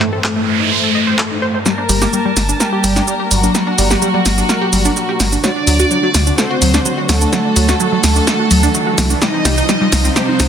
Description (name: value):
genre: melodic techno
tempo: 127 BPM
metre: 4/4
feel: straight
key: G harmonic minor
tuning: A4 = 438 Hz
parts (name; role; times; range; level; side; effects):
- mellow synth brass; melody; 0.0-10.5 s; F#3 to Eb4; -20 LUFS; left 1 dB; chorus, dub echo
- dark studio string section; sustained chords; 0.0-10.5 s; A2 to A5; -23 LUFS; left 2 dB; none
- tight sequenced synth; arpeggios; 0.0-10.4 s; F#3 to Eb5; -19 LUFS; equal; chorus, phaser, tape echo
- analog drone; drone; 0.0-1.7 s; G2; -28 LUFS; left 1 dB; chorus
- punchy analog drum machine; drums; 0.0-10.5 s; handclaps, hi-hat, shaker, snare drum; -17 LUFS; equal; overdrive, low-pass filter on snare, low-pass filter on perc, low-pass filter on hats
- noise sweep and riser; sound effects; 0.1-10.5 s; none; -23 LUFS; right 4 dB; none
- rich studio violin section; second line; 1.7-10.5 s; F#4 to Eb5; -20 LUFS; right 2 dB; low-pass filter, tape echo
- dark detuned saw bass; bass; 1.9-10.5 s; G1 to D2; -16 LUFS; equal; none
room: moderate concert hall reverb, RT60 1.9 s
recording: dense, heavily limited modern master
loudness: -12 LUFS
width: side -8 dB against mid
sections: 0.0-1.7 A section; 1.7-10.5 B section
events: filter sweep on synth arpeggio sound 0.0-1.7; noise sweep 0.1-1.7; build-up 1.7-10.5; drum fill 1.7-10.5; riser 1.7-10.5; filter sweep on analog polysynth 1.7-10.5; filter sweep on violin section 1.7-10.5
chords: 0.0 Am; 1.7 Gm; 5.4 D; 9.2 Cm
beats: 0.24 0.71 1.19 | 1.66 2.13 2.60 3.08 | 3.55 4.02 4.49 4.96 | 5.44 5.91 6.38 6.86 | 7.33 7.80 8.27 8.74 | 9.22 9.69 10.16